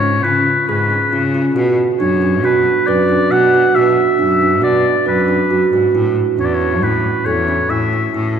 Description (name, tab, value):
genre	contemporary instrumental, chamber music in an uneven meter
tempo	137 BPM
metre	5/4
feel	straight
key	unclear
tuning	A4 = 440 Hz
part	warm oboe	melody	0.0-8.1 s	B4 to F#5	-17 LUFS	left 3 dB	none
part	kalimba	arpeggios	0.0-8.4 s	C#4 to B4	-15 LUFS	right 4 dB	none
part	clear cello	bass	0.0-8.3 s	E2 to C#3	-19 LUFS	left 2 dB	none
room	wet church reverb, RT60 3.6 s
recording	recorded in a church or concert hall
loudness	-12 LUFS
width	side -8 dB against mid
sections	0.0-8.4 A section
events	none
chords	0.0 C#7; 1.6 Bm; 5.9 A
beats	0.24 0.68 1.12 | 1.56 2.00 2.44 2.88 3.31 | 3.75 4.19 4.63 5.07 5.51 | 5.95 6.38 6.82 7.26 7.70 | 8.14